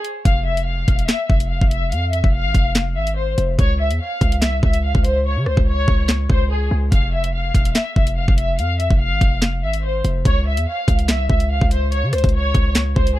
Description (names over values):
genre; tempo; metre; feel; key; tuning
hip hop, drill; 144 BPM; 4/4; half-time; F harmonic minor; A4 = 439 Hz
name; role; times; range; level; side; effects
drill drum kit; drums; 0.0-13.2 s; handclaps, hi-hat, kick drum, rim click, snare drum; -18 LUFS; equal; none
rich studio violin section; melody; 0.3-13.2 s; Ab4 to F5; -23 LUFS; left 2 dB; low-pass filter, ping-pong delay
hard-hitting 808-style bass; bass; 0.3-13.2 s; E1 to Db3; -20 LUFS; equal; none
room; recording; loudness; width
little or no reverb; dark, warm production; -16 LUFS; side -15 dB against mid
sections
0.0-13.2 A section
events
break 0.0; hi-hats muted 5.3-6.9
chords
0.3 Fm; 3.6 N.C.; 6.9 Fm; 10.3 N.C.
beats
| 0.25 0.67 1.09 1.50 | 1.92 2.34 2.75 3.17 | 3.59 4.00 4.42 4.84 | 5.25 5.67 6.09 6.50 | 6.92 7.34 7.75 8.17 | 8.59 9.00 9.42 9.84 | 10.25 10.67 11.09 11.50 | 11.92 12.34 12.75 13.17